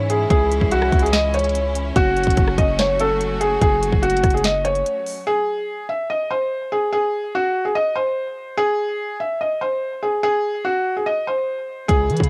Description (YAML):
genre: hip hop, trap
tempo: 145 BPM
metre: 4/4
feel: half-time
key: unclear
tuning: A4 = 441 Hz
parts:
  - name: felt-muted upright piano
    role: melody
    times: 0.0-12.3 s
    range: F#4 to E5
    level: -22 LUFS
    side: equal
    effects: cassette tape
  - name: clear symphonic string section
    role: sustained chords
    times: 0.0-5.2, 11.9-12.3 s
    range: C#3 to F#4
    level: -31 LUFS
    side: equal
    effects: none
  - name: hard-hitting 808-style bass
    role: bass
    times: 0.0-4.8, 11.9-12.3 s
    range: F#1 to E3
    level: -25 LUFS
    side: equal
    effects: none
  - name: trap drum kit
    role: drums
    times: 0.1-5.2, 11.9-12.3 s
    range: hi-hat, kick drum, rim click, snare drum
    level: -22 LUFS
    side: equal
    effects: cassette tape
room: little or no reverb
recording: home recording on cassette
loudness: -20 LUFS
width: mono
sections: 0.0-5.3 A section; 5.3-12.3 A section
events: none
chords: 0.0 C#m; 2.0 F#m; 5.3 N.C.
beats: | 0.30 0.72 1.13 1.55 | 1.96 2.37 2.79 3.20 | 3.62 4.03 4.44 4.86 | 5.27 5.68 6.10 6.51 | 6.92 7.34 7.75 8.17 | 8.58 8.99 9.41 9.82 | 10.23 10.65 11.06 11.48 | 11.89